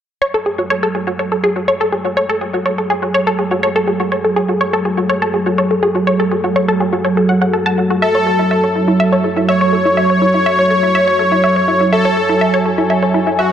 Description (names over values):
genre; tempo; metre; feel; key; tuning
techno; 123 BPM; 4/4; straight; F# minor; A4 = 441 Hz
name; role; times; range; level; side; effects
dark analog pad; sustained chords; 0.6-13.5 s; F#3 to G#5; -17 LUFS; right 1 dB; chorus
wide unison pluck; arpeggios; 0.2-13.5 s; E4 to A5; -16 LUFS; equal; analog delay
soft supersaw; melody; 8.0-13.5 s; F#4 to C#5; -14 LUFS; left 1 dB; tape echo
room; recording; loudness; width
wet spring reverb, RT60 2.1 s; echo-heavy mix; -12 LUFS; side -9 dB against mid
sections
0.2-13.5 A section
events
none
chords
0.2 F#madd9; 8.0 A/F#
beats
| 0.22 0.71 1.19 1.68 | 2.17 2.66 3.15 3.63 | 4.12 4.61 5.10 5.58 | 6.07 6.56 7.05 7.54 | 8.02 8.51 9.00 9.49 | 9.97 10.46 10.95 11.44 | 11.93 12.41 12.90 13.39